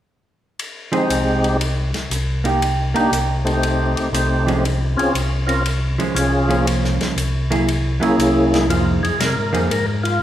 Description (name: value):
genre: soul jazz organ trio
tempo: 118 BPM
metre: 4/4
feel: swing 67% on 8ths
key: F minor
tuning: A4 = 439 Hz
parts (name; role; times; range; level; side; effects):
- warm soul drum kit; drums; 0.6-10.1 s; hi-hat, ride cymbal, snare drum; -26 LUFS; left 2 dB; none
- percussive tonewheel organ; melody; 0.9-10.2 s; Ab3 to Bb4; -20 LUFS; equal; slow rotary speaker, overdrive, chorus vibrato
- hollow-body jazz guitar; accompaniment; 0.9-9.7 s; F3 to Ab4; -22 LUFS; right 2 dB; none
- mellow tonewheel organ; bass; 1.1-10.2 s; C2 to C3; -20 LUFS; equal; chorus vibrato, slow rotary speaker
room: wet recital hall reverb, RT60 1.5 s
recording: recorded in a church or concert hall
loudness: -16 LUFS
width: side -12 dB against mid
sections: 0.6-8.7 A section; 8.7-10.2 B section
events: none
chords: 0.6 Fm7 (rootless); 2.6 Cm7; 3.6 F7; 4.6 Bbm7 (rootless); 6.7 C7b9b13; 7.7 Gb9; 8.7 Fm11